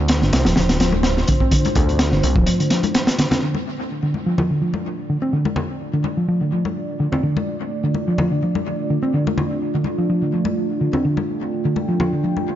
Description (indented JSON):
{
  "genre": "breakbeat, breaks",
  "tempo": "126 BPM",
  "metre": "4/4",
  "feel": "straight",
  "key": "D minor",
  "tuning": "A4 = 442 Hz",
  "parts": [
    { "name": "dark analog pad", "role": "sustained chords", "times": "0.0-12.6 s", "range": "A3 to G5", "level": "-25 LUFS", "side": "right 1 dB", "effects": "chorus, sidechain pumping" },
    { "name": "fat analog bass", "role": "bass", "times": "0.0-2.5 s", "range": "D1 to D2", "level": "-20 LUFS", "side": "equal", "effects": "tube saturation" },
    { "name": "crunchy breakbeat drum kit", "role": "drums", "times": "0.1-3.4 s", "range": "hi-hat, kick drum, snare drum", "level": "-19 LUFS", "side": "equal", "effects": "dub echo" },
    { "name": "hollow-body short-scale picked electric bass", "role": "riff", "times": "0.2-12.3 s", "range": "D3 to C4", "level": "-21 LUFS", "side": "equal", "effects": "low-pass filter, dub echo" },
    { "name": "congas", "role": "percussion", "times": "0.3-12.5 s", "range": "none", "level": "-27 LUFS", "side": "left 4 dB", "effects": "dub echo" }
  ],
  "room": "light reverb, studio reverb",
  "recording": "echo-heavy mix, nothing above 7.5 kHz",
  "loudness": "-17 LUFS",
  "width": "side -11 dB against mid",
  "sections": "0.0-3.4 A section; 3.4-12.6 B section",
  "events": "none",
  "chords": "0.0 Dm"
}